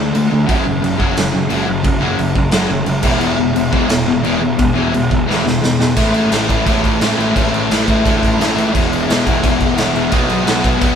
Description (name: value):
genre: punk rock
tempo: 174 BPM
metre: 4/4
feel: straight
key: A major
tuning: A4 = 439 Hz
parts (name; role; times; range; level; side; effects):
- distorted electric guitar; riff; 0.0-11.0 s; E2 to B3; -17 LUFS; left 6 dB; distortion
- sludgy distorted guitar; riff; 0.0-11.0 s; E2 to B3; -19 LUFS; right 5 dB; overdrive
- fuzz picked electric bass; bass; 0.0-11.0 s; E1 to E2; -23 LUFS; right 1 dB; overdrive
- raw garage drum kit; drums; 0.1-10.9 s; crash cymbal, kick drum, snare drum; -17 LUFS; equal; none
room: moderate studio reverb, RT60 0.8 s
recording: band playing live in one room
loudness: -12 LUFS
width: side -8 dB against mid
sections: 0.0-6.0 A section; 6.0-11.0 B section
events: half time 0.0-6.0; drum fill 5.3-6.0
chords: 0.5 F#5; 3.1 E5; 6.0 A5; 8.7 E5; 10.1 B5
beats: 0.14 | 0.49 0.83 1.17 1.51 | 1.85 2.20 2.54 2.88 | 3.23 3.57 3.91 4.26 | 4.60 4.94 5.29 5.63 | 5.98 6.32 6.67 7.01 | 7.36 7.70 8.05 8.39 | 8.74 9.08 9.43 9.77 | 10.12 10.46 10.81